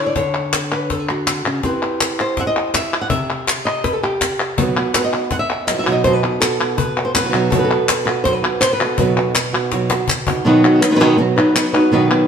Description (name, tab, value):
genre	flamenco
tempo	163 BPM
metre	4/4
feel	straight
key	B phrygian dominant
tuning	A4 = 440 Hz
part	flamenco guitar	melody	0.0-12.3 s	B2 to F#5	-17 LUFS	equal	none
part	cajon	percussion	0.2-10.4 s	none	-24 LUFS	left 5 dB	none
part	palmas hand claps	percussion	0.3-12.3 s	none	-21 LUFS	left 2 dB	none
part	flamenco guitar	stabs	4.6-12.3 s	B2 to F#4	-20 LUFS	right 4 dB	none
room	wet stone room reverb, RT60 1.2 s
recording	band playing live in one room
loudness	-14 LUFS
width	side -7 dB against mid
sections	0.0-10.5 A section; 10.5-12.3 B section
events	drum fill 9.7-10.5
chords	0.0 D5; 1.6 C; 4.6 B